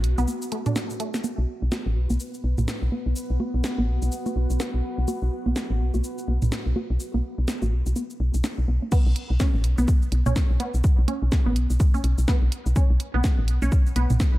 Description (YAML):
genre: minimal techno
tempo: 125 BPM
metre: 4/4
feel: swing 59% on 16ths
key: unclear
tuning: A4 = 441 Hz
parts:
  - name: woody FM bass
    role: bass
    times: 0.0-14.4 s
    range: A1 to B1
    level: -22 LUFS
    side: equal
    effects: sidechain pumping
  - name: house drum kit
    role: drums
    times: 0.0-14.3 s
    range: cabasa, crash cymbal, hi-hat, snare drum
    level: -32 LUFS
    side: equal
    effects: none
  - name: deep dark ambient pad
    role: texture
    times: 0.0-8.9 s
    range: B3 to F#5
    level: -35 LUFS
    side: equal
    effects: chorus, built-in reverb, sidechain pumping
  - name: resonant blip pluck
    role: riff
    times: 0.2-14.0 s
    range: A3 to F#4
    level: -32 LUFS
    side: right 1 dB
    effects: phaser, sidechain pumping, analog delay
  - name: electronic congas and toms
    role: percussion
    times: 0.3-14.2 s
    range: none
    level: -30 LUFS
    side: right 2 dB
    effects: analog delay
  - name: bubbling stepped-filter texture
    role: texture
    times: 1.2-8.9 s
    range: B3 to B4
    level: -42 LUFS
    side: left 2 dB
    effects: chorus, built-in reverb, sidechain pumping
  - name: electronic kick drum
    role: drums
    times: 8.9-14.3 s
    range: none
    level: -20 LUFS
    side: equal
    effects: none
room: little or no reverb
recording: none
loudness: -21 LUFS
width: side -17 dB against mid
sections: 0.0-1.2 A section; 1.2-8.9 B section; 8.9-14.4 C section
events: break 0.3-1.2; drop 8.9-14.4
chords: 0.0 B5